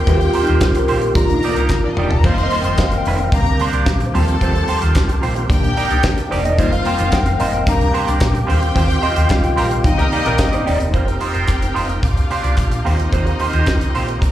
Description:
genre	disco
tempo	110 BPM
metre	4/4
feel	straight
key	unclear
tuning	A4 = 440 Hz
part	rich studio string section	second line	0.0-14.3 s	D4 to C6	-25 LUFS	left 3 dB	slapback echo
part	mellow tine electric piano	accompaniment	0.0-11.0 s	D3 to G5	-20 LUFS	left 2 dB	medium stereo tremolo, slapback echo
part	bright tonewheel organ	sustained chords	0.0-14.3 s	C3 to Bb4	-25 LUFS	right 1 dB	chorus vibrato, fast rotary speaker
part	clean electric guitar	accompaniment	0.1-14.3 s	Bb3 to D5	-23 LUFS	right 6 dB	wah, slapback echo
part	hollow-body short-scale fingered electric bass	bass	0.1-14.3 s	Eb1 to Eb2	-19 LUFS	equal	none
part	damped 70s drum kit	drums	0.1-14.3 s	crash cymbal, hi-hat, kick drum, snare drum, toms	-20 LUFS	equal	none
part	group handclap	percussion	0.6-13.8 s	none	-32 LUFS	left 2 dB	slapback echo
part	warm horn section	stabs	9.6-10.6 s	Bb3 to Bb4	-23 LUFS	left 2 dB	slapback echo
room	light reverb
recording	live gig heard through the venue's PA, club reverb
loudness	-14 LUFS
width	side -12 dB against mid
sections	0.0-10.9 A section; 10.9-14.3 B section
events	tine electric piano solo 0.0-10.9; drum fill 1.7-2.2; band accent 8.8-10.9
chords	0.0 Eb69; 1.2 Cm9; 2.2 F7sus4; 3.3 Bb69; 4.1 Eb69; 5.5 Cm9; 6.6 F7sus4; 7.7 Bb69; 8.5 Eb69; 9.8 Cm9; 10.9 F7sus4; 12.0 Bb69; 12.9 Eb69

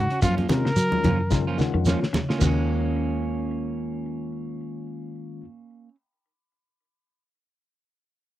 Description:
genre	afrobeat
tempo	109 BPM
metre	4/4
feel	swing 55% on 16ths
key	Eb minor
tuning	A4 = 441 Hz
part	clear trumpet	melody	0.0-1.6 s	F4 to Bb4	-27 LUFS	equal	none
part	clean electric guitar	arpeggios	0.0-2.6 s	Db3 to Gb3	-31 LUFS	left 3 dB	tape echo
part	fingered electric bass	bass	0.0-5.4 s	Eb2 to Gb3	-26 LUFS	equal	none
part	electric guitar at the edge of break-up	stabs	0.1-5.9 s	F3 to Gb4	-30 LUFS	right 6 dB	none
part	cloth-damped thuddy drum kit	drums	0.1-2.6 s	china cymbal, hi-hat, kick drum, snare drum	-27 LUFS	equal	none
part	shekere	percussion	0.2-2.6 s	none	-29 LUFS	right 2 dB	none
part	congas	percussion	0.4-2.6 s	none	-28 LUFS	right 2 dB	none
part	tine electric piano	accompaniment	0.5-5.4 s	Eb3 to Gb5	-31 LUFS	left 9 dB	overdrive
room	little or no reverb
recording	dry, close 1970s-style studio recording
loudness	-22 LUFS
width	side -14 dB against mid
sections	0.0-2.4 A section; 2.4-4.6 B section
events	drum fill 1.3-2.4; tine electric piano fill 1.3-2.4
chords	0.2 Gbmaj7; 2.4 Eb5

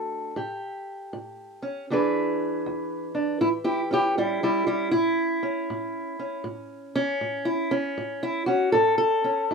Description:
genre	acoustic country blues, solo or duo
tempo	79 BPM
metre	4/4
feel	swing 64% on 8ths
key	A mixolydian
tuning	A4 = 442 Hz
part	fingerpicked steel-string acoustic guitar	solo	0.0-9.5 s	E2 to B4	-24 LUFS	equal	none
room	moderate small room reverb, RT60 0.5 s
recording	rough home demo mix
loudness	-23 LUFS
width	side -5 dB against mid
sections	0.0-3.4 A section; 3.4-9.5 B section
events	steel-string acoustic guitar solo 3.4-9.5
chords	0.4 A7; 1.9 E7; 3.4 A7

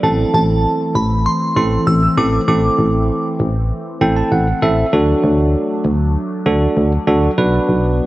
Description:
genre	synth-pop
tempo	98 BPM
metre	4/4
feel	straight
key	A dorian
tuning	A4 = 441 Hz
part	glassy synth bell	melody	0.0-3.4 s	A5 to E6	-20 LUFS	equal	chorus
part	bell-like tine electric piano	accompaniment	0.0-8.1 s	C4 to A5	-17 LUFS	right 2 dB	fast stereo tremolo
part	phased analog pad	sustained chords	0.0-8.1 s	E3 to D4	-22 LUFS	left 1 dB	phaser, chorus
part	solid FM bass	bass	0.0-8.0 s	A1 to D2	-16 LUFS	equal	none
room	moderate lush hall reverb, RT60 2.6 s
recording	worn, warbling old tape, cassette tape, warbly pitch drift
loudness	-13 LUFS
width	side -17 dB against mid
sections	0.0-8.1 A section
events	tine electric piano fill 3.7-4.9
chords	0.0 Am; 4.9 D; 7.4 Bm

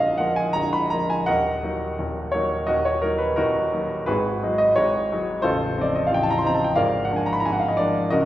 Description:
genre	classical, romantic character piece for solo piano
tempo	80-91 BPM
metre	4/4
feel	rubato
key	Eb minor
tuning	A4 = 440 Hz
part	clear grand piano	solo	0.0-8.3 s	A0 to C6	-20 LUFS	equal	none
room	wet recital hall reverb, RT60 1.4 s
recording	heard from further back in the room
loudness	-20 LUFS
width	side -13 dB against mid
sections	0.0-8.3 A section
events	none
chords	0.0 Bb; 1.3 Ebm; 4.1 Ab5; 5.4 F7/A; 6.8 Bb7/Ab

